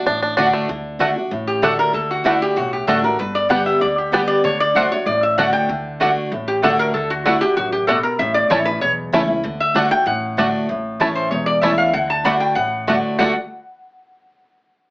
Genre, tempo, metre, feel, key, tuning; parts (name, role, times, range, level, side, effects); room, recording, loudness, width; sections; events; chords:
bluegrass; 192 BPM; 4/4; straight; D major; A4 = 442 Hz
bluegrass banjo; melody; 0.0-13.4 s; G3 to A4; -21 LUFS; right 1 dB
picked steel-string acoustic guitar; accompaniment; 0.0-13.3 s; E2 to G4; -21 LUFS; equal
upright bass; bass; 0.1-13.3 s; E1 to D2; -33 LUFS; equal
mandolin; stabs; 0.4-13.3 s; A3 to A5; -19 LUFS; right 1 dB
lap resonator guitar; melody; 1.5-13.3 s; E4 to B5; -18 LUFS; equal
wet small room reverb, RT60 0.5 s; AM radio sound; -15 LUFS; side -22 dB against mid
0.7-10.7 A section; 10.7-13.2 B section; 13.2-14.4 C section
0.0 D; 3.2 G; 4.4 D; 8.2 A; 9.4 D; 10.7 A; 11.9 D